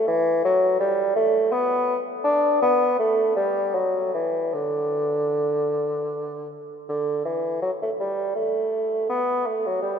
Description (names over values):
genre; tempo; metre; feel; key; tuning
classical, baroque-style fantasia for unaccompanied bassoon; 50-56 BPM (dotted quarters); 6/8; rubato; D major; A4 = 441 Hz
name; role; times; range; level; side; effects
mellow bassoon; solo; 0.0-10.0 s; D3 to D4; -21 LUFS; equal; none
room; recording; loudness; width
wet cathedral reverb, RT60 5.0 s; minimal, uncompressed stereo recording; -20 LUFS; side -7 dB against mid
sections
0.0-6.9 A section; 6.9-10.0 A section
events
none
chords
none